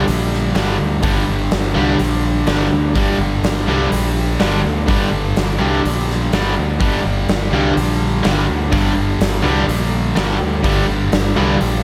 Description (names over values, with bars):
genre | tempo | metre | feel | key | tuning
hard rock | 125 BPM | 4/4 | straight | G minor | A4 = 442 Hz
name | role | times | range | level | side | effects
cranked stack guitar | riff | 0.0-11.6 s | G2 to G3 | -25 LUFS | equal | overdrive, spring reverb, slapback echo
distorted electric guitar | riff | 0.0-11.8 s | G2 to G3 | -24 LUFS | equal | distortion, slapback echo
tight distorted guitar | riff | 0.0-11.6 s | G2 to G3 | -26 LUFS | equal | distortion
modern bright fingered electric bass | bass | 0.0-11.8 s | G1 to D2 | -22 LUFS | equal | none
huge arena drum kit | drums | 0.1-11.7 s | hi-hat, kick drum, snare drum | -23 LUFS | equal | none
room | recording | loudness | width
moderate lush hall reverb, RT60 1.7 s, studio reverb | big arena sound | -17 LUFS | mono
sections
0.0-11.8 A section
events
none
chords
0.0 Gm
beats
0.07 0.55 | 1.03 1.51 2.00 2.48 | 2.96 3.44 3.92 4.40 | 4.88 5.36 5.84 6.32 | 6.80 7.28 7.76 8.24 | 8.72 9.21 9.69 10.17 | 10.65 11.12 11.61